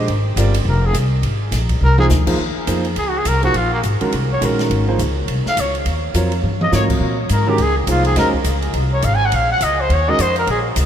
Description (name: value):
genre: modal jazz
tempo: 208 BPM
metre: 4/4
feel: swing 60% on 8ths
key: Eb dorian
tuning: A4 = 440 Hz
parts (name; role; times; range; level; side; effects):
- clear concert grand piano; accompaniment; 0.0-10.2 s; C3 to Eb5; -22 LUFS; right 2 dB; none
- upright bass; bass; 0.0-10.9 s; F1 to Bb2; -18 LUFS; equal; none
- open jazz drum kit; drums; 0.1-10.8 s; crash cymbal, hi-hat, kick drum, ride cymbal, snare drum, toms; -25 LUFS; equal; none
- growling trumpet; melody; 0.7-10.6 s; Bb3 to Ab5; -20 LUFS; equal; none
room: moderate cathedral reverb, RT60 6.5 s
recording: in a vast, echoing space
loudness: -15 LUFS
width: side -9 dB against mid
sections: 0.0-2.4 A section; 2.4-10.9 A section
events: trumpet solo 0.0-10.9; drum fill 1.8, 6.4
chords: 0.0 Fmadd9; 2.4 Eb13sus4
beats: | 0.08 0.37 0.66 0.94 | 1.23 1.52 1.81 2.10 | 2.39 2.68 2.97 3.25 | 3.54 3.83 4.12 4.41 | 4.70 4.99 5.28 5.57 | 5.86 6.14 6.43 6.72 | 7.01 7.30 7.59 7.88 | 8.17 8.45 8.74 9.03 | 9.32 9.61 9.90 10.19 | 10.47 10.76